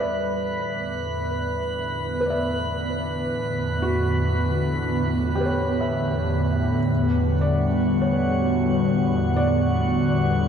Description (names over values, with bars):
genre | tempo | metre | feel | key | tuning
ambient | 64 BPM | 3/4 | straight | E dorian | A4 = 440 Hz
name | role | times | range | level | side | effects
airy breathy pad | sustained chords | 0.0-10.5 s | E2 to B3 | -22 LUFS | equal | chorus, phaser
felt-muted upright piano | arpeggios | 0.0-10.5 s | F#4 to E5 | -29 LUFS | equal | tape echo
drifting glass-harmonics texture | texture | 0.0-10.5 s | F#4 to B5 | -29 LUFS | equal | chorus, built-in reverb
room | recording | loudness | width
wet lush hall reverb, RT60 3.0 s | dark, warm production | -21 LUFS | side -8 dB against mid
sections
0.0-6.9 A section; 6.9-10.5 B section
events
fade-in on analog synth pad 0.0-6.9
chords
0.0 Emadd9